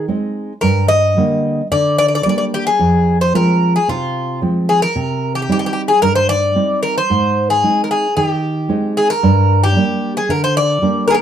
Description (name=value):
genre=greek folk, Greek bouzouki band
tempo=112 BPM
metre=4/4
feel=straight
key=G phrygian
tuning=A4 = 439 Hz
part: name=Greek bouzouki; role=melody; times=0.0-11.2 s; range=F4 to Eb5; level=-15 LUFS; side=left 1 dB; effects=plate reverb
part: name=nylon-string guitar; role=accompaniment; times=0.0-11.2 s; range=F2 to Eb4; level=-16 LUFS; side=right 1 dB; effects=none
room=wet small room ambience, RT60 0.5 s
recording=dark, warm production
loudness=-13 LUFS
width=side -9 dB against mid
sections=0.0-9.2 A section; 9.2-11.2 A section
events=none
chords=0.0 Ab; 0.6 Gm; 2.8 Fm; 5.0 Cm; 7.1 Ab; 9.2 Gm